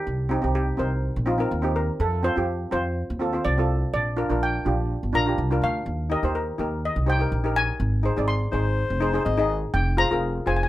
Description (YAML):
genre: calypso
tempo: 124 BPM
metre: 4/4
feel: swing 53% on 16ths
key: Eb major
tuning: A4 = 440 Hz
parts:
  - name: steel pan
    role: melody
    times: 0.0-10.7 s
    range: Eb4 to C6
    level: -27 LUFS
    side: left 1 dB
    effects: none
  - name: steel pan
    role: accompaniment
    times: 0.0-10.7 s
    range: C4 to Eb5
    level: -26 LUFS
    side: equal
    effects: none
  - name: upright bass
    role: bass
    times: 0.1-10.7 s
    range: F1 to F2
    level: -25 LUFS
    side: equal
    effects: none
  - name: breathy alto saxophone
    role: second line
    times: 8.5-9.6 s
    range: C5 to Eb5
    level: -28 LUFS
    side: left 4 dB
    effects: none
room: little or no reverb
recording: rough home demo mix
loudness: -22 LUFS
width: side -15 dB against mid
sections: 0.0-10.7 A section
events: steel pan solo 0.0-10.7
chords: 0.1 Cm; 2.0 F7; 3.9 Bb; 5.9 Eb; 7.8 Ab; 9.7 Fm